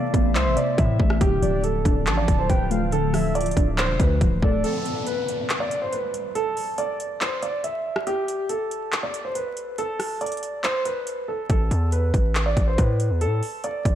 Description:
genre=hip hop, trap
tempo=140 BPM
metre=4/4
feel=half-time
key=A minor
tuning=A4 = 437 Hz
part: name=dark grand piano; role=melody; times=0.0-13.9 s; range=G4 to E5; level=-26 LUFS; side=right 1 dB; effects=lush chorus, low-pass filter, ping-pong delay
part: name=warbly dusty pluck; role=accompaniment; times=0.0-4.6 s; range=C3 to D4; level=-28 LUFS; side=left 1 dB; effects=chorus, low-pass filter
part: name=glassy FM pad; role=sustained chords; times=0.0-4.6 s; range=C3 to F4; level=-30 LUFS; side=equal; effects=ensemble chorus, built-in reverb, phaser
part: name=distorted 808-style bass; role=bass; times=0.1-4.6, 11.5-13.9 s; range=C1 to A2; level=-23 LUFS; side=equal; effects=distortion
part: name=trap drum kit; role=drums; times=0.1-13.9 s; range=handclaps, hi-hat, kick drum, rim click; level=-24 LUFS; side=equal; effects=overdrive
part: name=soft octave-layered synth lead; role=second line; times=0.4-4.6 s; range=D5 to A5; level=-32 LUFS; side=right 1 dB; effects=chorus, ping-pong delay
part: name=downlifter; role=sound effects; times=4.6-8.1 s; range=none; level=-34 LUFS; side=left 1 dB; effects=none
room=moderate lush hall reverb, RT60 1.7 s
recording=dreamy mix soaked in reverb, vinyl crackle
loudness=-21 LUFS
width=side -11 dB against mid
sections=0.0-4.6 A section; 4.6-13.9 B section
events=break 4.6-11.5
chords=0.0 Amadd9; 1.2 Dm; 4.6 N.C.; 11.5 Asus2

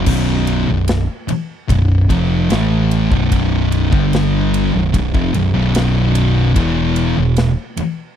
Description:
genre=stoner and doom metal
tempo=74 BPM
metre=4/4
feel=straight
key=B phrygian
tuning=A4 = 437 Hz
part: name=thick fuzz guitar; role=riff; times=0.0-7.8 s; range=B1 to A3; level=-18 LUFS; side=left 8 dB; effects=distortion
part: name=thick fuzz guitar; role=riff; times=0.0-7.8 s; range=B1 to A3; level=-17 LUFS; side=right 6 dB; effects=distortion
part: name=growling picked electric bass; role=bass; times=0.0-7.8 s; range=B0 to A1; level=-20 LUFS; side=equal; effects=overdrive
part: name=big rock drum kit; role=drums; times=0.1-8.0 s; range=crash cymbal, kick drum, ride cymbal, snare drum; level=-20 LUFS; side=equal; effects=none
room=small room ambience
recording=dry, close 1970s-style studio recording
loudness=-13 LUFS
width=side -9 dB against mid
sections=0.1-8.2 A section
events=none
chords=0.1 B5; 3.9 G5; 4.7 B5; 6.6 E5

